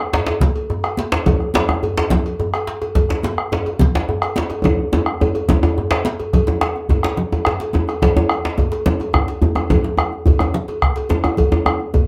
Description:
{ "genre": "west african traditional, West African drum ensemble", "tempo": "142 BPM (dotted quarters)", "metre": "12/8", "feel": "straight", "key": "none", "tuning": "none", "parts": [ { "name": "congas", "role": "percussion", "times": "0.1-12.1 s", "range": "none", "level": "-26 LUFS", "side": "equal", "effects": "none" }, { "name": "cowbell", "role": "percussion", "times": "0.1-12.1 s", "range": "none", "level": "-27 LUFS", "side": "equal", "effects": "none" }, { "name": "djembe", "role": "percussion", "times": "0.1-12.1 s", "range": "none", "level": "-28 LUFS", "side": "equal", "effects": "none" }, { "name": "djembe", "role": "percussion", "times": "0.1-11.8 s", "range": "none", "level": "-22 LUFS", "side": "equal", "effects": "none" }, { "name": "bombo", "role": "percussion", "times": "0.4-12.1 s", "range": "none", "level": "-21 LUFS", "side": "equal", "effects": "none" } ], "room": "wet small room reverb, RT60 0.5 s", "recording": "none", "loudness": "-18 LUFS", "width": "mono", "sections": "0.0-6.3 A section; 6.3-12.1 A section", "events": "drum fill 4.6-6.3", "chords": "none", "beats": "0.41 0.84 | 1.26 1.69 2.11 2.53 | 2.96 3.38 3.80 4.22 | 4.65 5.07 5.49 5.91 | 6.34 6.76 7.18 7.60 | 8.02 8.44 8.86 9.28 | 9.70 10.12 10.54 10.96 | 11.38 11.80" }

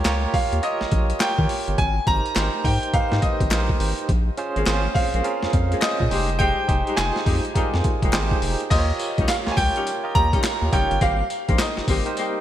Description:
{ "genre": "R&B, new jack swing", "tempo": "104 BPM", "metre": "4/4", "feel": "swing 64% on 16ths", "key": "unclear", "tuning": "A4 = 442 Hz", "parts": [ { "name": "barky tine electric piano", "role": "accompaniment", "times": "0.0-12.4 s", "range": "C4 to Eb5", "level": "-27 LUFS", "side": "right 4 dB", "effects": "medium tremolo" }, { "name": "round analog bass", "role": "bass", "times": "0.0-12.0 s", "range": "F1 to Eb3", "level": "-24 LUFS", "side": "equal", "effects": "none" }, { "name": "boom bap sampler-style drum kit", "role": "drums", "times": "0.0-12.3 s", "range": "crash cymbal, handclaps, hi-hat, kick drum, snare drum, tambourine", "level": "-23 LUFS", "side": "equal", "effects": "overdrive, vintage 12-bit sampler grit, gated reverb" }, { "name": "group handclap", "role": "percussion", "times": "0.1-11.8 s", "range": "none", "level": "-38 LUFS", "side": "left 7 dB", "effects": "none" }, { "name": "clear concert grand piano", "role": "melody", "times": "0.3-12.4 s", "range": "Eb5 to Bb5", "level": "-25 LUFS", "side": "equal", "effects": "none" }, { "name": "mellow horn section", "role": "stabs", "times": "4.6-12.4 s", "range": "G3 to Ab4", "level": "-29 LUFS", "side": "left 4 dB", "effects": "none" } ], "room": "moderate lush hall reverb, RT60 2.5 s", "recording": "bright 1980s-style digital production", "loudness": "-19 LUFS", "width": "side -11 dB against mid", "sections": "0.0-8.7 A section; 8.7-12.4 B section", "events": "none", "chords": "0.0 Eb7; 1.8 Abmaj9; 4.1 Bbm7; 6.1 Fm9; 8.7 Eb7; 11.0 Abmaj9", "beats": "0.05 0.63 1.20 | 1.78 2.36 2.94 3.51 | 4.09 4.67 5.24 5.82 | 6.40 6.97 7.55 8.13 | 8.70 9.28 9.86 10.44 | 11.01 11.59 12.17" }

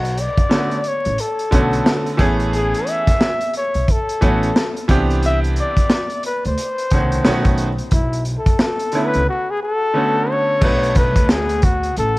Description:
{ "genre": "hip hop, jazz-hop", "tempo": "89 BPM", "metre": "4/4", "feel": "swing 62% on 16ths", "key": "B dorian", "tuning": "A4 = 440 Hz", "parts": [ { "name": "breathy flugelhorn", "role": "melody", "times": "0.0-12.2 s", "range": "E4 to E5", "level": "-21 LUFS", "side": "left 1 dB", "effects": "tape echo" }, { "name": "upright bass", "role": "bass", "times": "0.0-12.2 s", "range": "A1 to D2", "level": "-22 LUFS", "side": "equal", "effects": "none" }, { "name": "crunchy breakbeat drum kit", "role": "drums", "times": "0.0-12.2 s", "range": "crash cymbal, hi-hat, kick drum, snare drum", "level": "-18 LUFS", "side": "equal", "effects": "none" }, { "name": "bright upright piano", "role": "accompaniment", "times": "0.5-11.6 s", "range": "B2 to B4", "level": "-21 LUFS", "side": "right 1 dB", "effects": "none" } ], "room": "light reverb, small room ambience", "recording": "vinyl crackle", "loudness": "-15 LUFS", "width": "side -20 dB against mid", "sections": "0.0-10.6 A section; 10.6-12.2 B section", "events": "silent gap 9.3-10.6", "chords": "0.0 Bm9; 2.2 Amaj9; 4.9 Cmaj9; 7.2 B9; 7.9 Bm9; 10.6 Bm7", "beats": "0.50 1.18 1.85 | 2.53 3.20 3.87 4.55 | 5.22 5.90 6.57 7.25 | 7.92 8.59 9.27 9.94 | 10.62 11.29 11.96" }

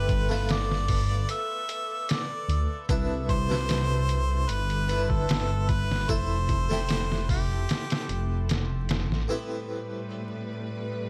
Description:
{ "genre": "trip hop", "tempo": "75 BPM", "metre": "4/4", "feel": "straight", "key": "A minor", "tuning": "A4 = 440 Hz", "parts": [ { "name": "warm harmonica", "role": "melody", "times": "0.0-8.5 s", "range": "G4 to E5", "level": "-35 LUFS", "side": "equal", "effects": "dub echo" }, { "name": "harpsichord", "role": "accompaniment", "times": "0.0-11.1 s", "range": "A2 to A4", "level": "-37 LUFS", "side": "equal", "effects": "tremolo, tape echo" }, { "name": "dark detuned saw bass", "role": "bass", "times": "0.0-9.3 s", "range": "F1 to D2", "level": "-30 LUFS", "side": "equal", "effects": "none" }, { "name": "bowed-like drone", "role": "texture", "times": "0.1-11.1 s", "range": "A4 to B4", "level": "-48 LUFS", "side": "equal", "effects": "none" }, { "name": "trip hop sampler-style drum kit", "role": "drums", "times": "0.1-9.3 s", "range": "hi-hat, kick drum, snare drum", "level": "-31 LUFS", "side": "equal", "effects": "studio reverb" }, { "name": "clear studio string section", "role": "sustained chords", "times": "9.3-11.1 s", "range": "A2 to B4", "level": "-37 LUFS", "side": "equal", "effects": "none" } ], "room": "studio reverb", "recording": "vinyl crackle", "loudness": "-27 LUFS", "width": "mono", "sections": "0.0-9.3 A section; 9.3-11.1 B section", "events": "none", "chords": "0.0 G7; 2.9 Cmaj7; 6.1 Fmaj7; 9.3 Am9", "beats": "0.49 1.29 2.09 | 2.89 3.69 4.49 5.29 | 6.09 6.89 7.69 8.49 | 9.29 10.09 10.89" }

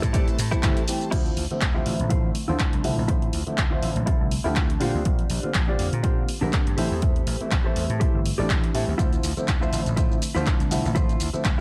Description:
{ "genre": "filtered disco house", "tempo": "122 BPM", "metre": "4/4", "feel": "swing 56% on 16ths", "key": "D minor", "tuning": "A4 = 440 Hz", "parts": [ { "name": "warm grand piano", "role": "accompaniment", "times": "0.0-11.6 s", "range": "D3 to E5", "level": "-31 LUFS", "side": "equal", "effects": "phaser, sidechain pumping, low-pass filter" }, { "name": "clear studio violin section", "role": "sustained chords", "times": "0.0-1.1 s", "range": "C5 to A5", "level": "-44 LUFS", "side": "equal", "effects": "none" }, { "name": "direct-recorded clean electric guitar", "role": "riff", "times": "0.0-11.6 s", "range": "D4 to D5", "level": "-34 LUFS", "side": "equal", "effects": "lush chorus, sidechain pumping, low-pass filter" }, { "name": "vintage slap bass", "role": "bass", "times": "0.0-11.6 s", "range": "G1 to Bb2", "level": "-30 LUFS", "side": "equal", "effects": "sidechain pumping, low-pass filter" }, { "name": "electronic kick drum", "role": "drums", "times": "0.0-11.6 s", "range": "none", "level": "-26 LUFS", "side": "equal", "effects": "small room ambience" }, { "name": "punchy analog drum machine", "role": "drums", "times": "0.0-11.6 s", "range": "crash cymbal, handclaps, hi-hat, shaker", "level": "-33 LUFS", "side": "equal", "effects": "sidechain pumping on hats, small room ambience, sidechain pumping on perc, sidechain pumping on cymbals" } ], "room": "light reverb, digital ambience", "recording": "none", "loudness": "-24 LUFS", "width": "mono", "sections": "0.0-1.1 A section; 1.1-11.6 B section", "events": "drop 0.0-1.1; filter sweep 1.1-11.6", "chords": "0.0 Am7; 1.1 Dm9; 4.8 Bb69; 6.8 Am7; 9.0 Dm9", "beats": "0.14 0.63 | 1.12 1.61 2.11 2.60 | 3.09 3.58 4.07 4.57 | 5.06 5.55 6.04 6.53 | 7.02 7.52 8.01 8.50 | 8.99 9.48 9.97 10.47 | 10.96 11.45" }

